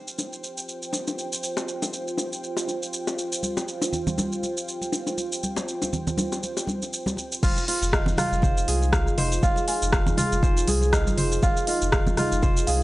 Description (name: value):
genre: afro house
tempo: 120 BPM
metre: 4/4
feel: swing 56% on 16ths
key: F minor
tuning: A4 = 440 Hz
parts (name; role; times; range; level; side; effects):
- dark analog pad; sustained chords; 0.0-12.8 s; Eb4 to G5; -31 LUFS; right 1 dB; chorus, sidechain pumping
- kora; arpeggios; 0.0-0.4, 7.4-12.8 s; F4 to F5; -30 LUFS; equal; sidechain pumping, tape echo
- afro-pop drum kit; drums; 0.1-12.8 s; crash cymbal, hi-hat, rim click, shaker, toms; -28 LUFS; equal; studio reverb
- bongos; percussion; 0.2-7.2 s; none; -31 LUFS; left 3 dB; none
- congas; percussion; 3.4-12.5 s; none; -29 LUFS; right 1 dB; none
- warm sub bass; bass; 7.4-12.8 s; F1 to C2; -26 LUFS; equal; sidechain pumping
- electronic kick drum; drums; 7.4-12.5 s; none; -24 LUFS; equal; studio reverb
- buzzing kalimba; melody; 7.9-12.8 s; Eb5 to Ab5; -30 LUFS; right 2 dB; tape echo
room: small room ambience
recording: dry, gritty hardware recording, nothing above 10.8 kHz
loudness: -22 LUFS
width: side -18 dB against mid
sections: 0.0-7.4 A section; 7.4-12.8 B section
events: drop 7.4-12.8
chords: 0.0 Fsus2; 7.4 Fm7